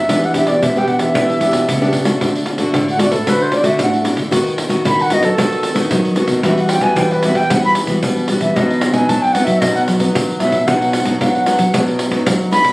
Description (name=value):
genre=samba and choro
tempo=113 BPM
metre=4/4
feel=straight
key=E minor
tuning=A4 = 440 Hz
part: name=bright reedy baroque flute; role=melody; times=0.0-12.7 s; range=A4 to B5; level=-16 LUFS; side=equal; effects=plate reverb
part: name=nylon-string guitar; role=accompaniment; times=0.0-12.7 s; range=A2 to G4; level=-17 LUFS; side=left 1 dB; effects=none
part: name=nylon-string guitar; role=bass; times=0.1-12.7 s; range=A2 to B3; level=-20 LUFS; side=equal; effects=none
part: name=pandeiro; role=percussion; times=0.1-12.7 s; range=none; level=-20 LUFS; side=equal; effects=none
room=wet studio reverb, RT60 0.7 s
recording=recorded on a phone in the room, studio reverb, compression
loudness=-13 LUFS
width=side -21 dB against mid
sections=0.0-2.2 A section; 2.2-12.7 B section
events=flute solo 2.2-12.7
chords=0.1 Em7; 2.2 D; 4.3 B/D#; 6.4 Emadd9; 8.6 B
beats=| 0.10 0.63 1.16 1.69 | 2.21 2.74 3.27 3.80 | 4.33 4.86 5.39 5.92 | 6.45 6.97 7.50 8.03 | 8.56 9.09 9.62 10.15 | 10.68 11.21 11.74 12.27